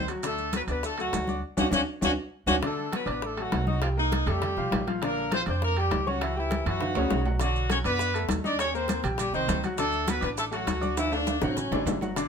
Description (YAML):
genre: latin, salsa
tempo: 201 BPM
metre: 4/4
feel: straight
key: D major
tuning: A4 = 439 Hz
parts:
  - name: warm horn section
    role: melody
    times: 0.0-12.0 s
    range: E3 to Eb5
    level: -29 LUFS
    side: left 1 dB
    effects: none
  - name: bright upright piano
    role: accompaniment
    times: 0.0-12.3 s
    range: C#3 to Eb6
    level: -32 LUFS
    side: left 2 dB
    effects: none
  - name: upright bass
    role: bass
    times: 0.0-12.3 s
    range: G1 to F#2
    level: -31 LUFS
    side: right 1 dB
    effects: none
  - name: bongos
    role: percussion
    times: 0.1-12.3 s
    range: none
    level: -36 LUFS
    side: left 6 dB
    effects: none
  - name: maracas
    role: percussion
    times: 0.1-2.5, 7.4-12.3 s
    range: none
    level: -41 LUFS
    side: right 9 dB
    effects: none
  - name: timbales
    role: percussion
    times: 0.1-12.3 s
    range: none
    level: -34 LUFS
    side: right 6 dB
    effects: none
  - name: congas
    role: percussion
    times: 0.2-12.3 s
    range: none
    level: -34 LUFS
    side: left 2 dB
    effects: none
room: moderate studio reverb, RT60 0.6 s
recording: minimal, uncompressed stereo recording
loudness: -25 LUFS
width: side -6 dB against mid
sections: 0.0-2.6 A section; 2.6-12.2 A section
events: band accent 1.4-2.6; drum fill 1.9-2.6, 6.8-7.4, 11.0-12.2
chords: 0.2 Dmaj7; 2.6 D; 3.8 Cm7; 4.4 Fadd9; 5.0 Bb69; 6.2 C#dim; 6.8 F#5; 7.4 Bm7; 8.6 Eb6; 9.8 Dmaj7